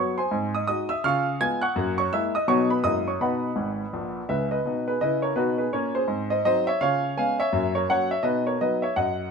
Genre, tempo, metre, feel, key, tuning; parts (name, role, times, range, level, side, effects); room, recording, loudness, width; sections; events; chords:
jazz, stride piano; 166 BPM; 4/4; swing 61% on 8ths; B major; A4 = 440 Hz
clear grand piano; solo; 0.0-9.3 s; G#1 to G#6; -22 LUFS; equal
moderate studio reverb, RT60 0.8 s; minimal, uncompressed stereo recording; -22 LUFS; side -5 dB against mid
0.0-4.7 A section; 4.7-9.3 A section
grand piano fill 3.6-4.7
0.3 G#7; 1.0 C#7; 1.8 F#9; 2.5 B; 2.8 F#9; 3.2 B; 6.1 G#7; 6.8 C#7; 7.5 F#; 8.3 B